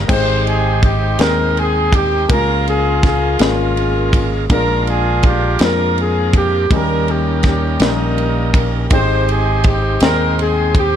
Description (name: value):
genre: slow gospel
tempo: 54 BPM (dotted quarters)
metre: 6/8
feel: straight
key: Ab major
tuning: A4 = 444 Hz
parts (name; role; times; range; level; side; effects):
- dark grand piano; accompaniment; 0.0-11.0 s; Ab2 to G5; -21 LUFS; left 4 dB; none
- bright tonewheel organ; sustained chords; 0.0-11.0 s; Gb3 to G5; -26 LUFS; right 5 dB; fast rotary speaker, overdrive
- fingered electric bass; bass; 0.0-11.0 s; Ab1 to F2; -19 LUFS; equal; none
- mellow horn section; melody; 0.1-11.0 s; G3 to C5; -18 LUFS; equal; none
- tight funk drum kit; drums; 0.1-10.9 s; crash cymbal, kick drum, ride cymbal, snare drum; -18 LUFS; equal; none
room: little or no reverb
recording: dark, warm production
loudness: -13 LUFS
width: side -9 dB against mid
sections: 0.1-11.0 A section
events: none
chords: 0.1 Abmaj7; 2.3 Db6; 4.5 Bb7; 6.7 Eb7; 8.9 Abmaj7